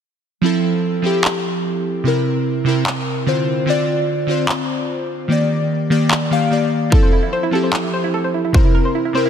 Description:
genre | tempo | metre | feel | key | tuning
future bass | 148 BPM | 4/4 | half-time | F major | A4 = 441 Hz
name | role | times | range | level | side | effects
glassy digital keys | accompaniment | 0.4-9.3 s | C3 to F5 | -17 LUFS | equal | chorus, sidechain pumping, dub echo
electronic handclaps | drums | 1.2-7.8 s | none | -22 LUFS | equal | none
soft round pluck | arpeggios | 6.9-9.3 s | E4 to C5 | -21 LUFS | right 3 dB | chorus, sidechain pumping, dub echo
electronic kick drum | drums | 6.9-8.6 s | none | -13 LUFS | equal | none
room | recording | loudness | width
moderate lush hall reverb, RT60 1.9 s | dense, heavily limited modern master | -15 LUFS | side -8 dB against mid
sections
0.4-9.3 A section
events
none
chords
0.4 Fmaj7; 2.1 C7; 3.5 Dm7; 5.3 Ebmaj7; 6.9 Fmaj7; 8.5 C7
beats
| 0.43 0.84 1.25 1.65 | 2.06 2.46 2.87 3.27 | 3.68 4.08 4.49 4.89 | 5.30 5.71 6.11 6.52 | 6.92 7.33 7.73 8.14 | 8.54 8.95

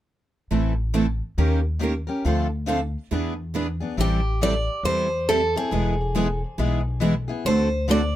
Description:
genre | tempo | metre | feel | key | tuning
acoustic string swing (jazz manouche) | 138 BPM | 4/4 | swing 62% on 8ths | A harmonic minor | A4 = 440 Hz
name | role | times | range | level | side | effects
picked steel-string acoustic guitar | accompaniment | 0.5-8.0 s | D3 to A#4 | -27 LUFS | left 4 dB | none
picked steel-string acoustic guitar | accompaniment | 0.5-8.0 s | D3 to B4 | -26 LUFS | right 6 dB | none
upright bass | bass | 0.5-8.1 s | E1 to E2 | -25 LUFS | equal | none
picked steel-string acoustic guitar | melody | 4.0-8.2 s | G4 to D5 | -24 LUFS | equal | tape echo
room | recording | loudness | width
little or no reverb | close, detailed microphones | -21 LUFS | side -13 dB against mid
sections
0.5-4.0 A section; 4.0-8.2 B section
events
none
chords
0.5 Am; 1.4 D#7; 2.2 Dm7; 3.1 E7; 4.0 Am7; 5.7 E; 7.5 D7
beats
| 0.51 0.94 1.37 1.81 | 2.24 2.68 3.11 3.54 | 3.98 4.41 4.85 5.28 | 5.72 6.15 6.59 7.02 | 7.45 7.89

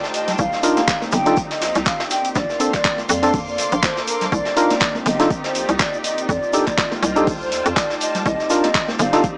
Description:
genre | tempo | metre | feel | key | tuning
deep house | 122 BPM | 4/4 | swing 56% on 16ths | C dorian | A4 = 440 Hz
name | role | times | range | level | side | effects
breathy mellow concert flute | melody | 0.0-9.2 s | Bb4 to G5 | -26 LUFS | equal | none
deep dark ambient pad | sustained chords | 0.0-9.4 s | A3 to D5 | -33 LUFS | equal | chorus, built-in reverb, sidechain pumping
vintage brush drum kit | drums | 0.0-9.4 s | hi-hat, snare drum | -31 LUFS | equal | sidechain pumping on hats, high-pass filter on hats, high-pass filter on snare, high-pass filter on room
egg shaker | percussion | 0.0-9.3 s | none | -35 LUFS | equal | none
dark studio string section | texture | 0.0-9.4 s | Bb3 to D6 | -30 LUFS | equal | sidechain pumping
deep house drum kit | drums | 0.1-9.3 s | handclaps, hi-hat | -26 LUFS | equal | overdrive
congas and bongos | percussion | 0.3-9.1 s | none | -33 LUFS | equal | none
hollow knocking FM bass | bass | 0.4-9.4 s | F1 to F2 | -24 LUFS | equal | sidechain pumping
electronic kick drum | drums | 0.4-9.3 s | none | -28 LUFS | equal | overdrive
percussive organ stab | stabs | 0.6-9.2 s | C4 to Bb4 | -21 LUFS | equal | chorus, sidechain pumping
room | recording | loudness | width
light reverb, small room ambience | dry, gritty hardware recording, cassette tape, small speaker sound | -19 LUFS | mono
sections
0.0-9.4 A section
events
none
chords
0.4 Cm11; 2.4 Bbmaj9; 4.3 Cm11; 6.3 F13; 8.3 Cm11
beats
| 0.39 0.88 1.37 1.86 | 2.35 2.85 3.34 3.83 | 4.32 4.81 5.30 5.80 | 6.29 6.78 7.27 7.76 | 8.26 8.75 9.24

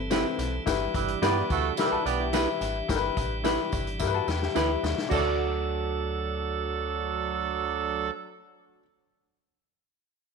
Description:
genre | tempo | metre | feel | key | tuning
uptempo 1960s-style soul | 108 BPM | 4/4 | straight | D major | A4 = 438 Hz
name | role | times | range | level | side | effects
tonewheel organ | sustained chords | 0.0-8.1 s | E3 to A4 | -36 LUFS | right 2 dB | overdrive, stopped rotary speaker
metallic FM bass | bass | 0.0-8.1 s | G1 to G2 | -33 LUFS | right 1 dB | none
warm concert grand piano | accompaniment | 0.1-8.8 s | C4 to B4 | -31 LUFS | left 10 dB | none
semi-hollow electric guitar | stabs | 0.1-8.9 s | E4 to D5 | -31 LUFS | right 10 dB | none
vintage drum kit | drums | 0.1-5.2 s | crash cymbal, hi-hat, kick drum, snare drum | -33 LUFS | left 4 dB | none
tambourine | percussion | 0.1-5.4 s | none | -44 LUFS | right 14 dB | none
warm horn section | second line | 0.9-8.1 s | F#3 to D5 | -30 LUFS | right 12 dB | none
vintage hollow-body jazz guitar | riff | 1.9-5.2 s | E4 to B4 | -34 LUFS | left 12 dB | none
room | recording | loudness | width
moderate echo chamber reverb, RT60 1.5 s, small room ambience | 1960s-style stereo with parts hard left and right | -25 LUFS | side -5 dB against mid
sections
0.0-5.1 A section; 5.1-7.3 B section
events
drum fill 4.0-5.1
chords
0.0 Cmaj7; 0.7 G6; 5.1 D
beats
0.11 | 0.67 1.22 1.78 2.33 | 2.89 3.45 4.00 4.56 | 5.12 5.67 6.23 6.79

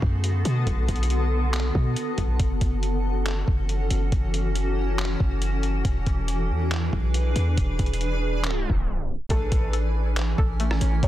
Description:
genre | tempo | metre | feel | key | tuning
hip hop, atmospheric cloud-rap | 139 BPM | 4/4 | half-time | A major | A4 = 441 Hz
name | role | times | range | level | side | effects
granular cloud pad | sustained chords | 0.0-11.1 s | D3 to G#5 | -29 LUFS | equal | built-in reverb, sidechain pumping
warm 808-style bass | bass | 0.0-11.1 s | E1 to B2 | -24 LUFS | equal | none
trip hop sampler-style drum kit | drums | 0.0-11.1 s | handclaps, hi-hat, kick drum, rim click | -26 LUFS | equal | none
reverse cymbal | sound effects | 8.6-9.3 s | none | -45 LUFS | left 2 dB | none
felt-muted upright piano | melody | 9.3-11.1 s | A4 to C#5 | -32 LUFS | equal | digital delay
string-like resonator pluck | arpeggios | 9.3-11.1 s | A3 to A4 | -35 LUFS | left 3 dB | chorus, digital delay
room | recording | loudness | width
digital ambience | dense, heavily limited modern master, tape stop | -22 LUFS | side -14 dB against mid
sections
0.0-9.3 A section; 9.3-11.1 B section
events
tape stop 8.4-9.3; reverse cymbal 8.6-9.3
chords
0.0 Bm7; 2.4 F#m7; 5.8 E7; 9.3 Amaj7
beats
0.24 | 0.67 1.10 1.53 1.96 | 2.40 2.83 3.26 3.69 | 4.12 4.55 4.99 5.42 | 5.85 6.28 6.71 7.14 | 7.58 8.01 8.44 8.87 | 9.30 9.73 10.16 10.60 | 11.03

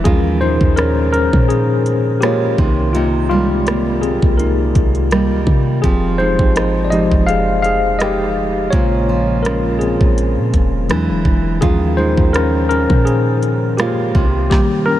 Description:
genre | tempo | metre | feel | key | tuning
contemporary R&B | 83 BPM | 4/4 | swing 54% on 16ths | unclear | A4 = 440 Hz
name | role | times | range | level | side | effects
mellow tine electric piano | accompaniment | 0.0-15.0 s | Db3 to F5 | -17 LUFS | left 2 dB | medium stereo tremolo
nylon-string guitar | arpeggios | 0.0-15.0 s | Bb2 to G4 | -20 LUFS | right 4 dB | analog delay
clean 808-style bass | bass | 0.0-14.5 s | E1 to C3 | -18 LUFS | equal | none
trap drum kit | drums | 0.1-14.7 s | hi-hat, kick drum, rim click, snare drum | -19 LUFS | equal | vintage 12-bit sampler grit
room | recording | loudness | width
moderate huge ambient reverb, RT60 7.5 s | dreamy mix soaked in reverb | -13 LUFS | side -13 dB against mid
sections
0.0-15.0 A section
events
tine electric piano solo 0.0-15.0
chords
0.1 Eb9sus4; 2.6 Cm7; 5.8 Fm9; 8.7 Bbm7; 10.9 E9; 11.6 Eb9sus4; 14.2 Cm7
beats
| 0.05 0.78 1.50 2.22 | 2.95 3.67 4.39 5.11 | 5.84 6.56 7.28 8.01 | 8.73 9.45 10.18 10.90 | 11.62 12.34 13.07 13.79 | 14.51

